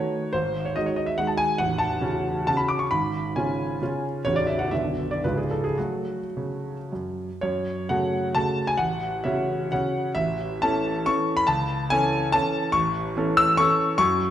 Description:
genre	classical, romantic triple-time dance for piano with dotted rhythms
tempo	102-151 BPM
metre	3/4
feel	rubato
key	F# minor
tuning	A4 = 440 Hz
part	warm concert grand piano	solo	0.0-14.3 s	A0 to E6	-22 LUFS	equal	none
room	moderate concert hall reverb, RT60 1.9 s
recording	none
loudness	-22 LUFS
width	side -11 dB against mid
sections	0.0-7.4 A section; 7.4-14.3 B section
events	none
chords	0.3 G#5; 1.6 F#m/A; 2.9 C#7/G#; 4.2 F#m/A; 4.7 Bm; 5.2 C#; 5.8 F#m; 8.8 F#m/A; 10.1 A; 11.5 A/C#; 12.7 A

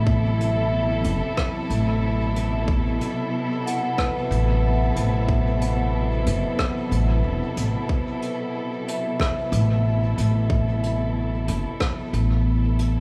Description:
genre	ambient dub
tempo	92 BPM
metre	4/4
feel	swing 55% on 16ths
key	A dorian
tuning	A4 = 440 Hz
part	warm chamber string section	sustained chords	0.0-13.0 s	B2 to A4	-30 LUFS	equal	none
part	vibraphone with medium mallets	arpeggios	0.0-13.0 s	B3 to F#5	-32 LUFS	equal	dub echo
part	upright bass	bass	0.0-13.0 s	E1 to A1	-24 LUFS	equal	none
part	electronic kick drum	drums	0.1-11.9 s	none	-26 LUFS	equal	none
part	soft brush drum kit	drums	0.4-12.9 s	hi-hat, rim click	-35 LUFS	equal	dub echo
room	light reverb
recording	studio ambience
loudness	-23 LUFS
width	mono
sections	0.0-13.0 A section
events	none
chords	0.0 Am69

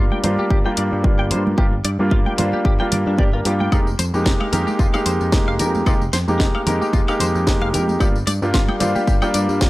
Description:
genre	nu-disco, nu disco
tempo	112 BPM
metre	4/4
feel	swing 55% on 16ths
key	unclear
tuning	A4 = 441 Hz
part	warm grand piano	accompaniment	0.0-9.7 s	G3 to Bb4	-21 LUFS	equal	low-pass filter, analog delay
part	direct-recorded clean electric guitar	riff	0.0-9.4 s	D4 to G5	-28 LUFS	left 2 dB	analog chorus, low-pass filter, analog delay
part	picked electric bass	bass	0.0-9.7 s	F1 to G2	-22 LUFS	equal	none
part	congas	percussion	0.1-9.7 s	none	-27 LUFS	right 3 dB	none
part	house drum kit	drums	0.2-9.7 s	hi-hat, snare drum, tambourine, woodblock	-25 LUFS	left 1 dB	none
part	electronic kick drum	drums	0.5-9.7 s	none	-18 LUFS	equal	none
room	digital ambience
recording	dry, gritty hardware recording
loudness	-16 LUFS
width	side -18 dB against mid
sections	0.0-9.7 A section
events	none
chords	0.0 Gm7; 3.7 Fm11; 8.0 Gm7

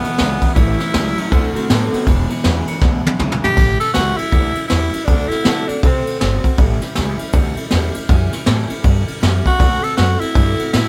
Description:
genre	rockabilly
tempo	159 BPM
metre	4/4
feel	swing 62% on 8ths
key	A mixolydian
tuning	A4 = 438 Hz
part	raspy tenor saxophone	melody	0.0-6.6, 9.5-10.9 s	B3 to A4	-22 LUFS	equal	none
part	picked steel-string acoustic guitar	accompaniment	0.0-10.9 s	E2 to F#4	-28 LUFS	equal	none
part	electric guitar through a small old amp	riff	0.0-3.6 s	E2 to B3	-25 LUFS	equal	spring reverb
part	jazz brush drum kit	drums	0.0-10.8 s	crash cymbal, kick drum, ride cymbal, snare drum, toms	-19 LUFS	equal	none
part	upright bass	bass	0.1-10.9 s	E1 to D3	-21 LUFS	equal	none
room	light reverb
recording	band playing live in one room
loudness	-16 LUFS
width	mono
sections	0.0-3.6 A section; 3.6-10.9 A section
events	drum fill 2.8-3.6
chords	0.0 E7; 0.6 A7; 1.3 D7; 2.1 E7; 3.6 A7; 5.1 D7; 6.6 A7; 9.6 D7

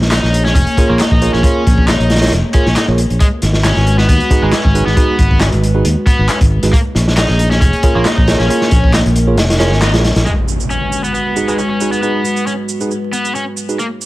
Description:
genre	breakbeat, breaks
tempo	136 BPM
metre	4/4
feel	swing 53% on 16ths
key	G# dorian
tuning	A4 = 438 Hz
part	dark analog pad	sustained chords	0.2-14.1 s	G#3 to C#5	-20 LUFS	left 1 dB	chorus, sidechain pumping
part	fingered electric bass	bass	0.0-10.2 s	E#1 to D#2	-14 LUFS	equal	none
part	crunchy breakbeat drum kit	drums	0.0-10.3 s	hi-hat, kick drum, snare drum	-14 LUFS	equal	none
part	crunchy overdriven guitar	riff	0.1-13.8 s	G#3 to D#4	-19 LUFS	left 1 dB	vintage 12-bit sampler grit, low-pass filter, ping-pong delay
part	electronic handclaps and shaker	drums	0.1-14.1 s	none	-23 LUFS	equal	none
part	tine electric piano	stabs	0.8-13.8 s	D#4 to C#5	-20 LUFS	right 3 dB	low-pass filter, ping-pong delay
part	impact	sound effects	10.3-12.0 s	none	-20 LUFS	equal	none
room	small room reverb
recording	vinyl crackle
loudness	-10 LUFS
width	side -18 dB against mid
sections	0.0-10.3 A section; 10.3-14.1 B section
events	band accent 9.8; impact 10.3-12.0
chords	0.0 A#m7; 3.2 G#m7; 6.7 A#m7; 10.3 G#m7

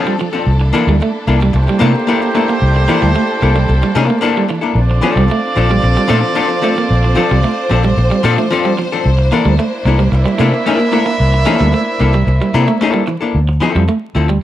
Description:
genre	funk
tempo	112 BPM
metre	4/4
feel	straight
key	unclear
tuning	A4 = 442 Hz
part	warm horn section	second line	0.0-13.0 s	D4 to E5	-19 LUFS	right 2 dB	none
part	archtop guitar, miked and amplified	accompaniment	0.0-14.3 s	F3 to A4	-16 LUFS	left 4 dB	none
part	warm symphonic string section	sustained chords	0.0-13.3 s	Bb3 to C5	-22 LUFS	right 1 dB	none
part	electric guitar at the edge of break-up	riff	0.1-14.4 s	E3 to Bb3	-19 LUFS	right 4 dB	none
part	vintage muted fingered electric bass	bass	0.5-14.4 s	Bb1 to C3	-13 LUFS	equal	none
room	small room ambience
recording	vinyl crackle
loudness	-11 LUFS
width	side -12 dB against mid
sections	0.0-13.3 A section; 13.3-14.4 B section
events	none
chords	0.5 C13; 4.8 Bbmaj9; 9.1 C13; 13.3 Dm9

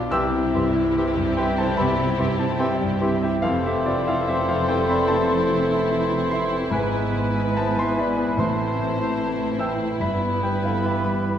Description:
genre	classical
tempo	72 BPM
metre	4/4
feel	rubato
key	unclear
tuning	A4 = 440 Hz
part	clear baby grand piano	melody	0.0-11.4 s	B1 to E6	-24 LUFS	left 2 dB	none
part	rich studio violin section	melody	0.0-11.4 s	G4 to C5	-34 LUFS	left 1 dB	none
part	rich studio violin section	second line	0.0-11.4 s	E4	-34 LUFS	left 2 dB	none
part	warm studio viola section	accompaniment	0.0-11.4 s	A3 to C4	-34 LUFS	left 1 dB	none
part	rich studio cello section	bass	0.0-11.4 s	F2 to C3	-30 LUFS	right 4 dB	none
part	warm studio double bass section	bass	0.0-11.4 s	F1 to C2	-31 LUFS	right 4 dB	none
part	mellow hollow silver concert flute	second line	0.1-11.4 s	G#5 to C6	-32 LUFS	left 2 dB	none
part	warm clarinet	second line	0.1-11.4 s	E4 to A4	-31 LUFS	left 1 dB	none
part	warm oboe	second line	0.1-11.4 s	B4 to E5	-32 LUFS	right 2 dB	none
part	warm bassoon	accompaniment	0.1-11.4 s	E3	-31 LUFS	right 3 dB	none
part	dark French horn section	sustained chords	0.1-11.4 s	D3 to E4	-30 LUFS	left 2 dB	none
part	timpani	percussion	8.4-9.5 s	A2	-30 LUFS	right 1 dB	none
room	wet scoring stage reverb, RT60 2.1 s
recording	none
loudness	-20 LUFS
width	side -9 dB against mid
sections	0.0-11.4 A section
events	none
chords	0.1 C; 3.4 Fmaj7; 6.7 E/G#; 8.4 Am; 10.0 Em/G

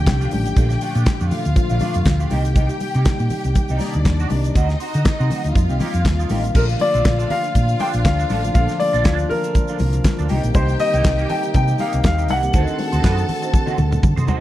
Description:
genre	disco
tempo	120 BPM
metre	4/4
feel	swing 56% on 16ths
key	Bb major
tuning	A4 = 439 Hz
part	rich studio string section	second line	0.0-14.2 s	D4 to A5	-28 LUFS	equal	none
part	mellow tine electric piano	accompaniment	0.0-14.4 s	Bb2 to Bb4	-27 LUFS	left 3 dB	none
part	hollow-body short-scale fingered electric bass	bass	0.0-14.3 s	A1 to D3	-20 LUFS	equal	none
part	clean electric guitar	accompaniment	0.1-14.4 s	A3 to C5	-30 LUFS	right 6 dB	wah, analog chorus
part	damped 70s drum kit	drums	0.1-14.4 s	crash cymbal, handclaps, hi-hat, kick drum, snare drum, toms	-20 LUFS	equal	none
part	congas	percussion	0.1-14.4 s	none	-29 LUFS	left 3 dB	none
part	egg shaker	percussion	0.1-14.4 s	none	-42 LUFS	right 9 dB	none
part	warm baby grand piano	melody	6.6-14.0 s	Bb4 to G5	-22 LUFS	left 2 dB	none
part	dark French horn section	sustained chords	6.6-14.4 s	Bb2 to F#4	-30 LUFS	equal	stereo widening
room	light reverb, studio reverb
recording	dark, warm production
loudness	-16 LUFS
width	side -14 dB against mid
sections	0.0-6.6 A section; 6.6-14.4 B section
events	drum fill 13.5-14.4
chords	0.0 Bbmaj7; 2.3 Cm7; 4.6 D7b9; 5.6 F9sus4; 6.6 Bbmaj7; 10.3 Cm7; 12.5 D7b9

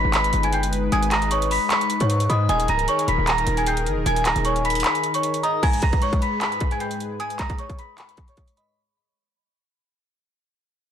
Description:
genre	hip hop, trap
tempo	153 BPM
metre	4/4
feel	half-time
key	G# harmonic minor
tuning	A4 = 442 Hz
part	worn celesta	melody	0.0-8.7 s	C#5 to B6	-23 LUFS	equal	low-pass filter, ping-pong delay
part	glassy synth bell	second line	0.0-8.8 s	G#5 to D#6	-30 LUFS	right 3 dB	chorus, tremolo, ping-pong delay
part	warm analog pad	sustained chords	0.0-8.7 s	G#2 to B4	-28 LUFS	left 2 dB	chorus, low-pass filter
part	hard-hitting 808-style bass	bass	0.0-4.8 s	C#1 to G#2	-23 LUFS	equal	none
part	trap drum kit	drums	0.1-8.7 s	crash cymbal, handclaps, hi-hat, kick drum	-25 LUFS	equal	none
room	light reverb, digital ambience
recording	blown-out, overdriven recording, overdrive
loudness	-19 LUFS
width	side -9 dB against mid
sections	0.0-5.6 A section; 5.6-8.8 B section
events	kick muted 4.8-5.6; fade-out 5.6-8.8; filter sweep 5.6-8.8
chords	0.0 G#m; 2.5 D#sus4; 5.6 G#madd9

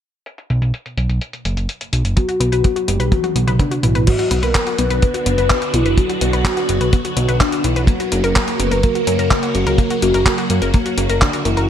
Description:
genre	italo disco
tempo	126 BPM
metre	4/4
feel	straight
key	B harmonic minor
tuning	A4 = 440 Hz
part	clean 12-bit digital drum machine	drums	0.3-11.7 s	crash cymbal, handclaps, hi-hat, toms	-22 LUFS	equal	low-pass filter on hats, low-pass filter on toms, low-pass filter on cymbals, low-pass filter on snare, low-pass filter on room, gated reverb
part	fat analog bass	bass	0.5-11.7 s	F#1 to F#2	-18 LUFS	equal	tube saturation
part	soft octave-layered synth lead	melody	2.2-11.7 s	D4 to B4	-20 LUFS	left 1 dB	chorus, phaser, tape echo
part	wide unison pluck	arpeggios	2.2-11.7 s	A#3 to B4	-25 LUFS	left 4 dB	tape echo
part	kick drum	drums	2.2-11.3 s	none	-15 LUFS	equal	none
part	phased string machine	sustained chords	4.1-11.7 s	C#3 to F#4	-23 LUFS	right 1 dB	ensemble chorus, phaser
room	light reverb, digital ambience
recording	none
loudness	-14 LUFS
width	side -9 dB against mid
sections	0.3-4.1 A section; 4.1-11.7 B section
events	filter sweep on drum 0.3-4.1; drum fill 3.1-4.1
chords	0.3 B5; 4.1 Bm; 7.9 F#

